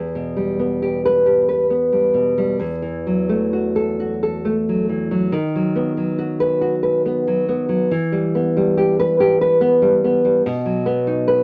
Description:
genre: romantic piece for solo classical guitar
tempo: 63-73 BPM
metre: 3/4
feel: rubato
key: E minor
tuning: A4 = 440 Hz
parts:
  - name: nylon-string guitar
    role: solo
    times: 0.0-11.4 s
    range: E2 to B4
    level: -19 LUFS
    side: equal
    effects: none
room: moderate studio reverb, RT60 0.8 s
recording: none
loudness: -19 LUFS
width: mono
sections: 0.0-11.4 A section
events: none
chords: 0.0 Em; 2.6 Esus24; 5.3 B/D#; 7.9 Em; 10.4 B

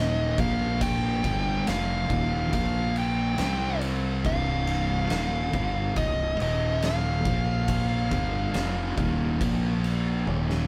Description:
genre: stoner and doom metal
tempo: 70 BPM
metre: 4/4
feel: straight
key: C minor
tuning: A4 = 444 Hz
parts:
  - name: fuzz lead guitar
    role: melody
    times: 0.0-10.3 s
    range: Eb5 to G5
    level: -33 LUFS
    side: equal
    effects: distortion
  - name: thick fuzz guitar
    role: riff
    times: 0.0-10.7 s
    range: C2 to C4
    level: -34 LUFS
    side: equal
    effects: distortion
  - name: thick fuzz guitar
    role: riff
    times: 0.0-10.7 s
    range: C2 to C4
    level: -32 LUFS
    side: equal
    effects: distortion
  - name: fuzz fingered electric bass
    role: bass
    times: 0.0-10.7 s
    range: C1 to C2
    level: -33 LUFS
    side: equal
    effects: overdrive, tube saturation
  - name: oversized low-tuned drum kit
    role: drums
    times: 0.4-10.7 s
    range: kick drum, ride cymbal, snare drum, toms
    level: -34 LUFS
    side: equal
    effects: none
room: moderate studio reverb, RT60 0.8 s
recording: band playing live in one room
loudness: -26 LUFS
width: mono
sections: 0.0-10.7 A section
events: drum fill 10.3-10.7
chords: 0.4 Bb5; 1.2 Cm; 2.5 Bb5; 3.4 Cm; 6.4 Eb5; 7.3 Bb5; 8.1 Cm; 9.4 Bb5

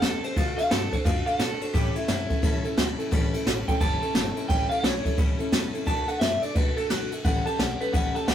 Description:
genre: rockabilly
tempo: 174 BPM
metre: 4/4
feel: swing 63% on 8ths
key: unclear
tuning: A4 = 440 Hz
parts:
  - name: electric guitar through a small old amp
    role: melody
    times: 0.0-8.3 s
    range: E4 to A5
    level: -29 LUFS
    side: equal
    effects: none
  - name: picked steel-string acoustic guitar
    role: accompaniment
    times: 0.0-8.3 s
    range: A2 to A4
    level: -31 LUFS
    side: left 1 dB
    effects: none
  - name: upright bass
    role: bass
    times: 0.0-8.3 s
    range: F#1 to B2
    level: -34 LUFS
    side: equal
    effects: none
  - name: jazz brush drum kit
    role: drums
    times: 0.0-8.3 s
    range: kick drum, ride cymbal, snare drum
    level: -25 LUFS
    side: equal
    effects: none
room: light reverb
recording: rough rehearsal-room recording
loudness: -23 LUFS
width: side -10 dB against mid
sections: 0.0-5.9 A section; 5.9-8.3 B section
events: none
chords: 0.4 D; 1.7 A7; 5.9 D; 7.2 A7

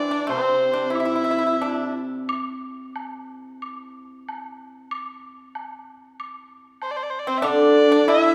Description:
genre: chinese traditional, Chinese chamber ensemble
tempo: 93 BPM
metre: 4/4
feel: rubato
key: unclear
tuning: A4 = 440 Hz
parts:
  - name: warm erhu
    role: melody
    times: 0.0-1.9, 6.8-8.3 s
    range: C5 to E5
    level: -26 LUFS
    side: equal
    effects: none
  - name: pipa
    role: second line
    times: 0.0-1.9, 7.3-8.3 s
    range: C4 to E4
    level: -28 LUFS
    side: equal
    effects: none
  - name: warm horsehead fiddle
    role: second line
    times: 0.0-1.9, 7.3-8.3 s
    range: C4 to E4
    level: -27 LUFS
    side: equal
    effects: none
  - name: hammered dulcimer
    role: accompaniment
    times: 0.0-2.3, 7.4-8.3 s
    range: C3 to E3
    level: -26 LUFS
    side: equal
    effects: none
  - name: woodblock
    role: percussion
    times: 0.3-8.2 s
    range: none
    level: -37 LUFS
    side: equal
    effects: none
room: moderate scoring stage reverb, RT60 2.2 s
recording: none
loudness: -21 LUFS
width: mono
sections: 0.0-8.3 A section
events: none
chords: none

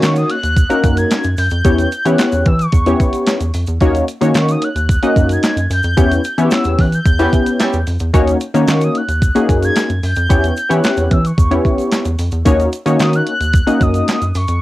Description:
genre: early-eighties boogie funk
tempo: 111 BPM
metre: 4/4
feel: straight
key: unclear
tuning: A4 = 440 Hz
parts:
  - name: mellow horn-like synth lead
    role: melody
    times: 0.0-14.6 s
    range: C#6 to G#6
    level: -21 LUFS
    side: equal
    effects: chorus, cassette tape
  - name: funky polysynth comp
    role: accompaniment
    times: 0.0-14.2 s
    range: A#3 to D#5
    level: -15 LUFS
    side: left 1 dB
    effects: chorus, cassette tape
  - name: rubbery square bass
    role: bass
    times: 0.0-14.6 s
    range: D#2 to E3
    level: -17 LUFS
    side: equal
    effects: tube saturation
  - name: clean 12-bit digital drum machine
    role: drums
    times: 0.0-14.6 s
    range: handclaps, hi-hat, kick drum, snare drum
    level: -16 LUFS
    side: equal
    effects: overdrive, cassette tape
  - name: egg shaker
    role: percussion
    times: 0.0-14.6 s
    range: none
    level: -37 LUFS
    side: right 7 dB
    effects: none
  - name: dark horn section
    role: second line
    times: 7.2-7.8 s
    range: G3 to G4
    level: -20 LUFS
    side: right 2 dB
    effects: cassette tape
room: little or no reverb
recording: home recording on cassette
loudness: -12 LUFS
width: side -16 dB against mid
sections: 0.0-14.6 A section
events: band accent 6.0-8.1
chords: 0.0 D#m7; 1.6 Em6; 3.8 D#m7; 6.0 Em6; 8.1 D#m7; 10.3 Em6; 12.5 D#m7

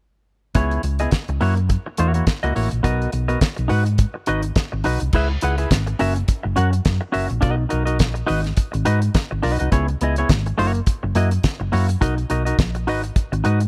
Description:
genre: disco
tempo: 105 BPM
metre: 4/4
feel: swing 56% on 16ths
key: C# dorian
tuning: A4 = 440 Hz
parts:
  - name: damped 70s drum kit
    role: drums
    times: 0.5-13.7 s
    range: crash cymbal, hi-hat, kick drum, snare drum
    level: -23 LUFS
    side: equal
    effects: none
  - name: semi-hollow electric guitar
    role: accompaniment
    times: 0.6-13.7 s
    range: A#3 to F#5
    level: -26 LUFS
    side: equal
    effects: none
  - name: hollow-body short-scale fingered electric bass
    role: bass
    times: 0.6-13.7 s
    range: F#1 to G#2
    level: -23 LUFS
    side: equal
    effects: none
room: little or no reverb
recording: none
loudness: -20 LUFS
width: mono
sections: 0.6-5.1 A section; 5.1-13.7 B section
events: none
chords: 0.6 C#m7; 1.4 F#7; 2.8 Bmaj7; 3.7 G#m7; 5.1 C#m7; 6.0 F#7; 7.4 Bmaj7; 8.3 G#m7; 9.7 C#m7; 10.6 F#7; 12.0 Bmaj7; 12.9 G#m7

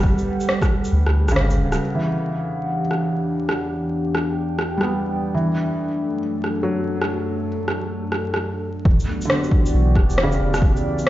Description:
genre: future garage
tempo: 136 BPM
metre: 4/4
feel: swing 63% on 16ths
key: E dorian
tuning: A4 = 441 Hz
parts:
  - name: felt-muted upright piano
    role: accompaniment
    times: 0.0-11.1 s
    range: C#3 to B3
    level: -25 LUFS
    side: equal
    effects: sidechain pumping, tape echo
  - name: warbly tape-like pad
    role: sustained chords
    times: 0.0-11.1 s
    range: E2 to G5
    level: -25 LUFS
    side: equal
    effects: chorus, built-in reverb, vintage 12-bit sampler grit, sidechain pumping
  - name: warm sub bass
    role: bass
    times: 0.0-1.8, 8.9-10.7 s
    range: D1 to D2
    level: -19 LUFS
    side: equal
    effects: none
  - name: electronic kick drum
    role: drums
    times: 0.0-0.7, 8.9-10.7 s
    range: none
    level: -18 LUFS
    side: equal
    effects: none
  - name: electronic shaker and rim click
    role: drums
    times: 0.2-11.1 s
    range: none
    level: -24 LUFS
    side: equal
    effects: none
room: light reverb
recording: played on a big sound system in a bare room, large studio reverb, vinyl crackle, nothing above 7.6 kHz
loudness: -18 LUFS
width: side -14 dB against mid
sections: 0.0-1.8 A section; 1.8-8.9 B section; 8.9-11.1 C section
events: kick drops out 0.9-1.8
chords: 0.0 Gmaj7; 1.8 Em7; 5.3 D/F#; 8.9 Em7

